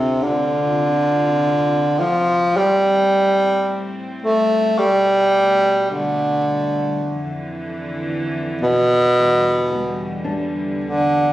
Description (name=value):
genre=celtic folk, Celtic slow air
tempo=50-56 BPM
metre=4/4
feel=rubato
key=D dorian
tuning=A4 = 439 Hz
part: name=warm tenor saxophone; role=melody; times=0.0-11.3 s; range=B2 to A3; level=-16 LUFS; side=equal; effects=none
part: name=nylon-string guitar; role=accompaniment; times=0.0-0.8, 9.2-11.3 s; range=D2 to F4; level=-26 LUFS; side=left 3 dB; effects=none
part: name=rich chamber string section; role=sustained chords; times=0.0-11.3 s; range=D2 to F4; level=-28 LUFS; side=equal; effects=none
room=light reverb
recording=recorded on a phone in the room, studio reverb, compression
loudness=-16 LUFS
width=side -14 dB against mid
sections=0.2-11.3 A section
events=none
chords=0.2 Dm7; 2.5 Am7; 4.8 Gadd9; 7.0 Dm/F; 9.2 Em7